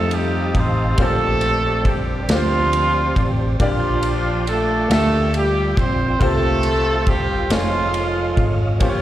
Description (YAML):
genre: slow gospel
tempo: 46 BPM (dotted quarters)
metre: 6/8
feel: straight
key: F major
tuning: A4 = 441 Hz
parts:
  - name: warm horn section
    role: melody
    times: 0.0-9.0 s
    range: F3 to C5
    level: -20 LUFS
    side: right 1 dB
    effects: none
  - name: clear grand piano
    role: accompaniment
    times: 0.0-9.0 s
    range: Bb2 to E5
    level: -26 LUFS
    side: left 3 dB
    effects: slapback echo
  - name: tonewheel organ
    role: sustained chords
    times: 0.0-9.0 s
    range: F4 to A5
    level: -29 LUFS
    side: right 3 dB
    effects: slow rotary speaker, chorus vibrato
  - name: hollow-body short-scale fingered electric bass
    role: bass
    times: 0.0-9.0 s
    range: F1 to F2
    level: -22 LUFS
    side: equal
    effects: none
  - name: modern studio drum kit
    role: drums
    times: 0.1-9.0 s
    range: kick drum, ride cymbal, snare drum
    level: -23 LUFS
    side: equal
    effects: none
room: little or no reverb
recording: live gig heard through the venue's PA, recital hall reverb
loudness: -16 LUFS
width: side -13 dB against mid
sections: 0.0-9.0 A section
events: none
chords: 0.0 F9; 1.0 Bb69; 3.6 Gm7/Bb; 6.2 C7sus4; 7.5 F7alt